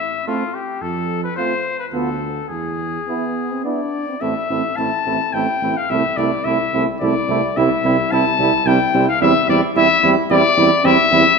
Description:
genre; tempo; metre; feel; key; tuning
classical, brass quintet; 108 BPM; 3/4; straight; A minor; A4 = 439 Hz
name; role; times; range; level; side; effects
clear trumpet; melody; 0.0-11.4 s; F4 to A5; -18 LUFS; left 6 dB; none
mellow flugelhorn; second line; 0.3-11.2 s; E4 to F4; -23 LUFS; right 8 dB; none
clear trombone; accompaniment; 0.3-11.2 s; G3 to B3; -25 LUFS; right 5 dB; none
warm French horn; accompaniment; 0.3-11.2 s; B3 to D4; -23 LUFS; equal; none
warm tuba; bass; 0.8-11.2 s; A1 to F2; -22 LUFS; right 3 dB; none
room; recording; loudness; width
wet scoring stage reverb, RT60 2.2 s; minimal, uncompressed stereo recording; -15 LUFS; side -4 dB against mid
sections
0.0-4.2 A section; 4.2-11.4 B section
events
none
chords
0.0 Am; 0.8 F; 1.9 Bm7b5/D; 2.5 E; 4.2 Am; 5.9 Am/C; 7.6 C; 9.2 C/E

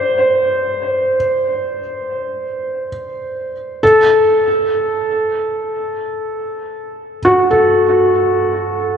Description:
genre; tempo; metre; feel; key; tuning
ambient; free time; none; none; unclear; A4 = 437 Hz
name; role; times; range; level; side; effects
felt-muted upright piano; solo; 0.0-9.0 s; F#4 to D5; -14 LUFS; equal; diffuse ambient delay
room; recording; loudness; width
wet cathedral reverb, RT60 6.7 s; in a vast, echoing space, nothing above 10.5 kHz; -13 LUFS; side -8 dB against mid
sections
0.0-9.0 A section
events
none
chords
0.0 Csus2; 3.8 F#m

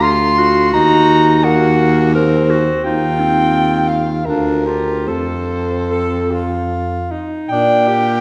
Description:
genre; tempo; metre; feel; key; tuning
classical, lyrical piece for single-reed quartet; 72-88 BPM; 3/4; rubato; Bb major; A4 = 440 Hz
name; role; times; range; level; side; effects
mellow soprano saxophone; melody; 0.0-8.2 s; Bb4 to C6; -19 LUFS; equal; none
clear alto saxophone; second line; 0.0-8.2 s; Bb3 to A4; -22 LUFS; equal; none
clear clarinet; accompaniment; 0.0-7.1 s; C4 to Bb4; -22 LUFS; equal; none
mellow baritone saxophone; bass; 0.0-8.2 s; D2 to Bb2; -20 LUFS; equal; none
room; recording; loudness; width
wet recital hall reverb, RT60 1.4 s; recorded in a church or concert hall; -15 LUFS; mono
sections
0.0-7.5 A section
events
none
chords
0.0 Bb/D (rootless); 0.7 Cm7b5/Eb; 2.8 F5/Eb; 4.3 Bb/D; 5.1 F; 7.5 Bb

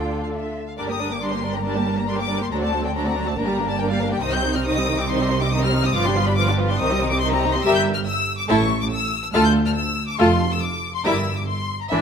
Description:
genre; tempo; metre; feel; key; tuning
quick classical-period movement for string orchestra; 140 BPM; 4/4; rubato; G minor; A4 = 440 Hz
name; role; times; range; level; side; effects
rich studio violin section; melody; 0.0-12.0 s; E5 to G6; -25 LUFS; left 5 dB; none
warm studio violin section; second line; 0.0-12.0 s; D4 to A5; -27 LUFS; left 2 dB; none
rich studio viola section; accompaniment; 0.0-12.0 s; D3 to A4; -23 LUFS; equal; none
rich studio double bass section; bass; 0.0-12.0 s; F1 to D2; -27 LUFS; right 3 dB; none
warm studio cello section; bass; 0.0-12.0 s; D2 to F4; -26 LUFS; right 2 dB; none
room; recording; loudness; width
moderate concert hall reverb, RT60 1.8 s; close, detailed microphones; -19 LUFS; side -7 dB against mid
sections
0.8-12.0 A section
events
none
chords
0.0 Dm; 0.8 Gm; 2.5 D7; 3.4 Gm; 4.2 Cm; 5.9 G7; 6.8 Cm; 7.6 Edim/G; 8.5 A5; 9.3 Dm; 10.2 F; 11.1 Edim/G

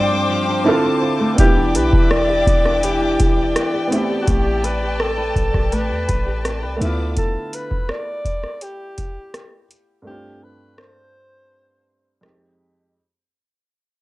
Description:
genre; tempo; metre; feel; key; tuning
contemporary R&B; 83 BPM; 4/4; straight; D dorian; A4 = 444 Hz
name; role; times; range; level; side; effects
breathy alto saxophone; melody; 0.0-12.2 s; F#4 to D5; -23 LUFS; equal; cassette tape, analog delay
warm baby grand piano; accompaniment; 0.0-13.0 s; F2 to A4; -22 LUFS; right 2 dB; cassette tape
clear studio string section; sustained chords; 0.0-7.2 s; B4 to D6; -25 LUFS; left 2 dB; sidechain pumping, cassette tape
flamenco guitar; arpeggios; 0.0-7.7 s; G2 to B4; -23 LUFS; left 1 dB; cassette tape, analog delay
warm 808-style bass; bass; 1.4-7.2 s; E1 to E2; -22 LUFS; equal; none
booming analog drum machine; drums; 1.4-12.4 s; hi-hat, kick drum, rim click; -19 LUFS; equal; cassette tape
room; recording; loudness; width
light reverb; home recording on cassette; -16 LUFS; side -18 dB against mid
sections
0.0-1.4 A section; 1.4-12.9 B section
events
break 0.0-1.4, 10.1-12.9; fade-out 1.4-12.9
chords
0.0 G7sus4; 0.7 Dm7; 1.4 Em7; 3.9 Am9; 6.8 Dm69; 10.1 G7sus4; 12.2 Fm7

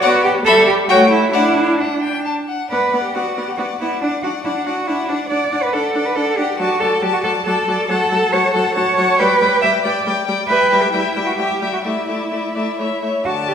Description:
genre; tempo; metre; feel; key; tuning
quick classical-period movement for string quartet; 127-141 BPM; 3/4; rubato; unclear; A4 = 440 Hz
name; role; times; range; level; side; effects
rich violin; melody; 0.0-13.5 s; E5 to B5; -22 LUFS; left 9 dB; none
rich violin; second line; 0.0-13.5 s; C#5 to A5; -23 LUFS; left 4 dB; none
rich viola; accompaniment; 0.0-13.5 s; D3 to D4; -22 LUFS; equal; none
warm cello; bass; 0.0-13.5 s; D4 to E5; -17 LUFS; right 2 dB; none
room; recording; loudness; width
wet recital hall reverb, RT60 1.5 s; recorded in a church or concert hall; -14 LUFS; side -8 dB against mid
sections
0.0-2.7 A section; 2.7-13.3 B section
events
none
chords
0.0 Bm; 0.5 Em/G; 0.9 A7; 1.3 D; 2.7 Bm; 4.0 Dadd9; 5.3 D; 6.6 D/F#; 7.9 F#m; 9.2 G; 10.5 Em/G; 11.8 Asus4

